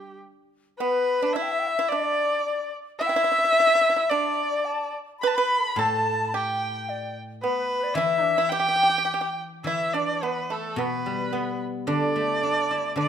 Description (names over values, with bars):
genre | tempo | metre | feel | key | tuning
chinese traditional, Chinese chamber ensemble | 108 BPM | 2/4 | rubato | G gong mode | A4 = 440 Hz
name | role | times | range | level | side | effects
rich erhu | melody | 0.0-13.1 s | G4 to B5 | -24 LUFS | right 1 dB | none
guzheng | accompaniment | 0.0-0.2, 5.8-13.1 s | A2 to E4 | -30 LUFS | left 2 dB | none
bright reedy xiao | second line | 0.8-9.4 s | B4 to B5 | -27 LUFS | left 6 dB | none
pipa | second line | 0.8-13.1 s | A3 to B4 | -30 LUFS | right 6 dB | none
room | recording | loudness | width
light reverb | minimal, uncompressed stereo recording | -22 LUFS | side -8 dB against mid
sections
0.8-9.7 A section; 9.7-13.1 B section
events
none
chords
none